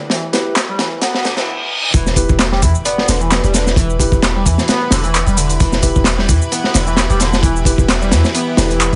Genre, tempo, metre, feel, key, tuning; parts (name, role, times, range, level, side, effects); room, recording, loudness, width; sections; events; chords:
breakbeat, breaks; 131 BPM; 4/4; swing 54% on 16ths; E minor; A4 = 440 Hz
lush unison pad; sustained chords; 0.0-9.0 s; E2 to B4; -28 LUFS; equal; chorus, sidechain pumping
overdriven synth lead; riff; 0.1-9.0 s; D3 to B3; -24 LUFS; equal; phaser, lush chorus, digital delay
crunchy breakbeat drum kit; drums; 0.1-9.0 s; hi-hat, kick drum, snare drum; -18 LUFS; equal
tine electric piano; stabs; 0.3-9.0 s; E4 to B4; -25 LUFS; equal; digital delay
punchy analog drum machine; drums; 0.6-9.0 s; handclaps, hi-hat, shaker; -22 LUFS; equal
reverse cymbal and impact; sound effects; 1.2-3.8 s; -25 LUFS; equal
warm 808-style bass; bass; 1.9-9.0 s; E1 to E2; -19 LUFS; equal; tube saturation
vibraphone with soft mallets; melody; 2.9-4.1 s; B4 to D5; -26 LUFS; equal; small speaker sound, digital delay
light reverb, studio reverb; high-pass filter, nothing above 10.7 kHz; -15 LUFS; mono
0.0-1.9 A section; 1.9-9.0 B section
build-up 0.0-1.9; drum fill 0.0-1.5; filter sweep on analog synth lead 0.0-1.9; filter sweep 0.0-1.9; reverse cymbal 1.2-1.9; drop 1.9-9.0; impact 1.9-3.8
0.0 Em